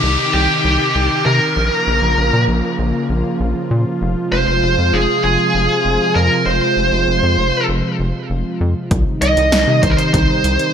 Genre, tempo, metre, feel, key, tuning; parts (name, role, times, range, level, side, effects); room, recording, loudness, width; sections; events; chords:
synth-pop; 98 BPM; 4/4; straight; F minor; A4 = 440 Hz
high-gain lead guitar; melody; 0.0-10.7 s; G4 to Eb5; -16 LUFS; right 1 dB; distortion, ping-pong delay
warm analog pad; sustained chords; 0.0-10.7 s; C3 to F4; -20 LUFS; equal; chorus
rubbery square bass; bass; 0.0-10.6 s; F1 to C3; -18 LUFS; equal
downlifter; sound effects; 0.0-4.0 s; -24 LUFS; equal
punchy analog drum machine; drums; 8.9-10.7 s; hi-hat, kick drum, snare drum; -18 LUFS; equal; overdrive, gated reverb
moderate lush hall reverb, RT60 1.6 s, digital ambience; bright 1980s-style digital production; -13 LUFS; side -8 dB against mid
0.0-10.7 A section
0.0 Cm; 1.6 Bbm; 4.0 Fm; 8.9 Cm